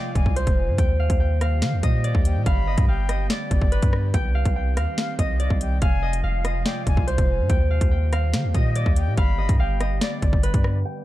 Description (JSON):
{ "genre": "hip hop, drill", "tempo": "143 BPM", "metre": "4/4", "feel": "half-time", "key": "unclear", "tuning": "A4 = 438 Hz", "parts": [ { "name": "Celtic harp", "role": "melody", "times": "0.0-11.0 s", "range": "B4 to G5", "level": "-29 LUFS", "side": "right 1 dB", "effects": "digital delay" }, { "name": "concert flute", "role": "second line", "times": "0.0-10.8 s", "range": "D5 to B5", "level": "-35 LUFS", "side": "left 7 dB", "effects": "digital delay" }, { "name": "airy breathy pad", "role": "sustained chords", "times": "0.0-11.0 s", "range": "C3 to G4", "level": "-34 LUFS", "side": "equal", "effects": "chorus" }, { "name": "long sustained 808-style bass", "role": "bass", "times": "0.2-10.8 s", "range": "F1 to Eb3", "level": "-22 LUFS", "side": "equal", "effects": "none" }, { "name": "drill drum kit", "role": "drums", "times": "0.2-10.7 s", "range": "hi-hat, kick drum, rim click, snare drum", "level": "-22 LUFS", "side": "equal", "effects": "overdrive" } ], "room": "digital ambience", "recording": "dark, warm production, low-pass filter", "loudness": "-19 LUFS", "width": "side -15 dB against mid", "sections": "0.0-10.9 A section", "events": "none", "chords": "0.0 Fm; 0.8 Eb; 2.5 G; 4.1 Cm; 5.8 Fm; 7.5 Eb; 9.2 G" }